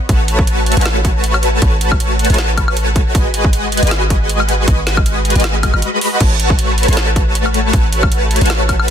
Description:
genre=future bass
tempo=157 BPM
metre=4/4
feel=swing 55% on 16ths, half-time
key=A lydian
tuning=A4 = 440 Hz
part: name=supersaw chords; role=riff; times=0.1-8.9 s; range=G#3 to B5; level=-16 LUFS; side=equal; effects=ensemble chorus, sidechain pumping, digital delay
part: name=warm 808-style bass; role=bass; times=0.1-8.9 s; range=G#1 to A1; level=-16 LUFS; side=equal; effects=sidechain pumping
part: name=electronic kick drum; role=drums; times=0.1-8.8 s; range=none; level=-14 LUFS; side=equal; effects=none
part: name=trap drum kit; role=drums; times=0.1-8.9 s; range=crash cymbal, hi-hat, snare drum, woodblock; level=-20 LUFS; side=equal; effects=none
room=digital ambience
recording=dense, heavily limited modern master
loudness=-11 LUFS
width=side -9 dB against mid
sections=0.0-8.9 A section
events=none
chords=0.0 A6; 3.1 G#m7; 6.2 A6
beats=| 0.09 0.47 0.86 1.24 | 1.62 2.00 2.38 2.77 | 3.15 3.53 3.91 4.29 | 4.68 5.06 5.44 5.82 | 6.21 6.59 6.97 7.35 | 7.73 8.12 8.50 8.88

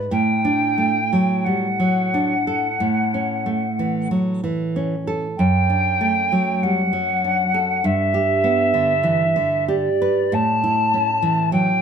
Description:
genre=romantic duo for flute and classical guitar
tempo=44-52 BPM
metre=4/4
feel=rubato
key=D major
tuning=A4 = 439 Hz
part: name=nylon-string guitar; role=accompaniment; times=0.0-11.8 s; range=F#2 to B4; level=-20 LUFS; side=right 2 dB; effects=none
part: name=silver concert flute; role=melody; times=0.1-11.8 s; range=D5 to A5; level=-20 LUFS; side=left 1 dB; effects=slapback echo, plate reverb
room=moderate studio reverb, RT60 0.9 s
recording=none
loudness=-17 LUFS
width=side -7 dB against mid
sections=0.0-11.8 A section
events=none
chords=0.1 D/A; 2.8 A; 5.4 D/F#; 7.8 G; 10.3 A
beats=| 0.11 1.45 2.80 4.10 | 5.38 6.62 7.84 9.04 | 10.33 11.51

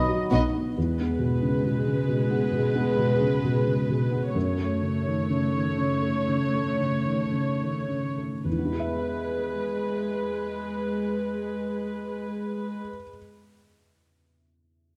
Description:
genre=cinematic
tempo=52-69 BPM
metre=4/4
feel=rubato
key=E major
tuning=A4 = 439 Hz
part: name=felt-muted upright piano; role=accompaniment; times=0.0-15.0 s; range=B1 to E5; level=-29 LUFS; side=equal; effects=none
part: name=dark chamber viola section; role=accompaniment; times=0.3-12.8 s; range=G#3 to C#5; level=-30 LUFS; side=equal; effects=none
room=moderate scoring stage reverb, RT60 1.7 s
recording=dark, warm production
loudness=-27 LUFS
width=mono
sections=0.8-8.5 A section; 8.5-13.0 B section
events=slowing down 0.0-8.5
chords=0.0 B; 0.8 E; 4.4 F#m; 8.5 E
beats=| 0.76 1.63 2.52 3.43 | 4.35 5.29 6.27 7.31 | 8.46 9.61 10.74 11.87

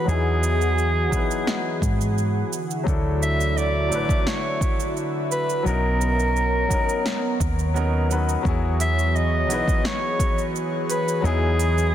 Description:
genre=sunset chillout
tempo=86 BPM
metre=4/4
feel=straight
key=E lydian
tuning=A4 = 439 Hz
part: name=mellow soprano saxophone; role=melody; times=0.0-11.9 s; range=G#4 to E5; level=-26 LUFS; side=equal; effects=ping-pong delay
part: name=clear concert grand piano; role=accompaniment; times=0.0-11.9 s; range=F#3 to B4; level=-28 LUFS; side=moving between left 5 dB and right 5 dB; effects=auto-pan, low-pass filter, ping-pong delay
part: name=airy breathy pad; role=sustained chords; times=0.0-11.9 s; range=D3 to F#5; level=-28 LUFS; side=equal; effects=chorus
part: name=hollow-body short-scale fingered electric bass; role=bass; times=0.1-11.9 s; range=F#1 to G#2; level=-22 LUFS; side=equal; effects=none
part: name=deep house drum kit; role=drums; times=0.1-11.9 s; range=hi-hat, shaker, snare drum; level=-30 LUFS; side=right 2 dB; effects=none
part: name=electronic kick drum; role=drums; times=1.1-10.3 s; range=none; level=-24 LUFS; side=equal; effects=none
room=light reverb, digital ambience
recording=dense, heavily limited modern master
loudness=-20 LUFS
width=side -11 dB against mid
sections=0.0-11.9 A section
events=filter sweep on grand piano 0.0-11.9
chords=0.0 Emaj9; 2.5 Dmaj9; 5.7 Bmaj9; 8.4 Emaj9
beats=| 0.08 0.78 1.47 2.17 | 2.87 3.57 4.26 4.96 | 5.66 6.36 7.05 7.75 | 8.45 9.15 9.85 10.54 | 11.24 11.94

